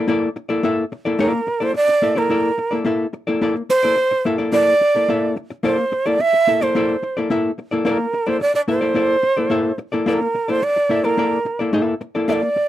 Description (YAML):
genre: funk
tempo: 108 BPM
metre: 4/4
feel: straight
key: unclear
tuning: A4 = 440 Hz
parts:
  - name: hollow-body jazz guitar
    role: accompaniment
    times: 0.0-12.6 s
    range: Bb3 to E5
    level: -19 LUFS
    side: left 2 dB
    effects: none
  - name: breathy bright shakuhachi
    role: melody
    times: 1.2-12.7 s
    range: Bb4 to E5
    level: -17 LUFS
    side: right 2 dB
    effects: none
room: little or no reverb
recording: dry, close 1970s-style studio recording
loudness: -16 LUFS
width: side -13 dB against mid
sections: 0.0-1.2 A section; 1.2-12.7 B section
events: none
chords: 0.0 Bbmaj7#11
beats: 0.09 0.64 | 1.20 1.75 2.31 2.87 | 3.42 3.98 4.53 5.09 | 5.64 6.20 6.75 7.31 | 7.86 8.42 8.97 9.52 | 10.08 10.63 11.18 11.74 | 12.29